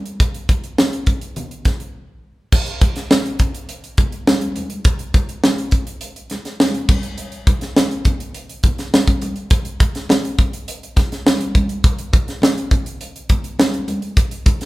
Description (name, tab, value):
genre	pop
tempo	103 BPM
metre	4/4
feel	straight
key	none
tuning	none
part	crisp fusion drum kit	drums	0.1-14.7 s	crash cymbal, hi-hat, kick drum, snare drum	-16 LUFS	equal	none
part	congas	percussion	0.5-14.6 s	none	-29 LUFS	equal	none
room	moderate large studio reverb, RT60 1.5 s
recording	band playing live in one room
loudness	-16 LUFS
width	side -19 dB against mid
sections	0.0-2.5 A section; 2.5-14.7 B section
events	break 1.9-2.5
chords	none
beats	| 0.20 0.78 1.36 1.95 | 2.53 3.11 3.69 4.27 | 4.85 5.44 6.02 6.60 | 7.18 7.76 8.35 8.93 | 9.51 10.09 10.67 11.26 | 11.84 12.42 13.00 13.59 | 14.17